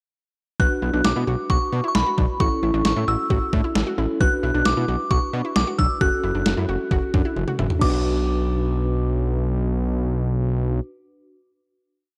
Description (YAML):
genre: synth-pop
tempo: 133 BPM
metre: 4/4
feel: straight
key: B minor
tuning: A4 = 441 Hz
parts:
  - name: glassy synth bell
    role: melody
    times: 0.6-10.8 s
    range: B5 to F#6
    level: -28 LUFS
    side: equal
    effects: chorus, phaser, analog delay
  - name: tine electric piano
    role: accompaniment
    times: 0.6-10.8 s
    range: C#4 to B4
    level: -30 LUFS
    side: equal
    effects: medium tremolo
  - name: analog pluck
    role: arpeggios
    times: 0.6-10.9 s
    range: B3 to B4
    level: -32 LUFS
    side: equal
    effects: chorus, analog delay
  - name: fat analog bass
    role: bass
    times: 0.6-10.8 s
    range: F#1 to B2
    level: -25 LUFS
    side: equal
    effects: none
  - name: detuned 8-bit digital drum machine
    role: drums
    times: 0.6-7.9 s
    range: crash cymbal, kick drum, snare drum, toms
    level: -25 LUFS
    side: equal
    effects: overdrive
room: moderate recital hall reverb, RT60 1.8 s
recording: dark, warm production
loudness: -22 LUFS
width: mono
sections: 0.6-7.8 verse; 7.8-11.4 final chord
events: drum fill 7.4-7.8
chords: 0.6 Bm; 2.4 A; 4.2 Bm; 6.0 F#m7; 7.8 Bm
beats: | 0.60 1.05 1.50 1.95 | 2.40 2.85 3.30 3.75 | 4.21 4.66 5.11 5.56 | 6.01 6.46 6.91 7.36 | 7.82 8.27 8.72 9.17 | 9.62 10.07 10.52